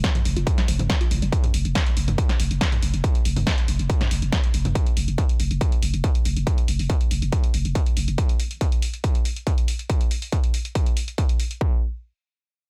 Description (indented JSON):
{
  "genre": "driving peak-time techno",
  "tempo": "140 BPM",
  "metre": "4/4",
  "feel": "straight",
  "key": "unclear",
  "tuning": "A4 = 440 Hz",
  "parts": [
    { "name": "woody wave-folded pluck", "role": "riff", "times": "0.0-1.3 s", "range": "F3 to F4", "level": "-35 LUFS", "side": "equal", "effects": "chorus, sidechain pumping, digital delay" },
    { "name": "growling 808-style bass", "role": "bass", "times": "0.0-8.2 s", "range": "F1", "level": "-28 LUFS", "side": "equal", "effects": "tube saturation, sidechain pumping, low-pass filter" },
    { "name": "electronic kick drum", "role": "drums", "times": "0.0-11.7 s", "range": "none", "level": "-24 LUFS", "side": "equal", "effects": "distortion, overdrive" },
    { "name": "punchy analog drum machine", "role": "drums", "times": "0.0-11.6 s", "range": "hi-hat, snare drum, toms", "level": "-31 LUFS", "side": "equal", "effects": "none" }
  ],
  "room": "little or no reverb",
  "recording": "none",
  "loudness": "-22 LUFS",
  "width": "mono",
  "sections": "0.0-11.6 A section; 11.6-12.7 B section",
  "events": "none",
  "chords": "none"
}